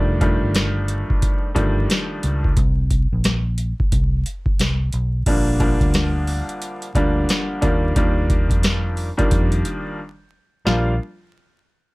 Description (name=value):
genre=hip hop, boom-bap hip-hop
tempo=89 BPM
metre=4/4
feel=swing 63% on 16ths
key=Bb major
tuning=A4 = 438 Hz
part: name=bright upright piano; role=accompaniment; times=0.0-10.9 s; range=D3 to F4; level=-22 LUFS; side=equal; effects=cassette tape, high-pass filter, low-pass filter
part: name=vintage muted fingered electric bass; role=bass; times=0.0-11.0 s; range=F1 to F2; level=-21 LUFS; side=equal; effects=none
part: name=booming analog drum machine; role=drums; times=0.2-10.9 s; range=crash cymbal, hi-hat, kick drum, rim click, snare drum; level=-20 LUFS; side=equal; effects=overdrive
room=little or no reverb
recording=vinyl crackle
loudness=-17 LUFS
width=side -22 dB against mid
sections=0.0-5.3 A section; 5.3-10.7 B section; 10.7-11.9 C section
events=break 10.0-10.7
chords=0.0 F13; 2.6 Bbsus2; 5.3 Bb6; 7.6 Ebmaj9; 10.7 Bb6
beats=0.55 1.22 1.89 | 2.57 3.24 3.92 4.59 | 5.26 5.94 6.61 7.29 | 7.96 8.64 9.31 9.98 | 10.66